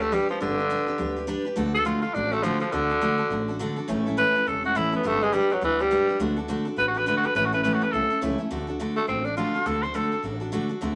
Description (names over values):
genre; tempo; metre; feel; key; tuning
rockabilly; 208 BPM; 4/4; swing 60% on 8ths; D major; A4 = 439 Hz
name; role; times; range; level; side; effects
breathy tenor saxophone; melody; 0.0-10.2 s; D3 to C5; -26 LUFS; equal; none
picked steel-string acoustic guitar; accompaniment; 0.0-11.0 s; A2 to B4; -30 LUFS; equal; none
upright bass; bass; 0.0-11.0 s; E1 to D2; -38 LUFS; equal; none
room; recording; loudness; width
moderate small room reverb, RT60 0.6 s; vinyl crackle; -25 LUFS; mono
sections
0.0-8.5 A section; 8.5-11.0 B section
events
tenor saxophone solo 0.0-8.5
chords
0.0 G; 1.6 D; 3.9 A; 5.0 G; 6.2 D; 7.3 A; 8.5 D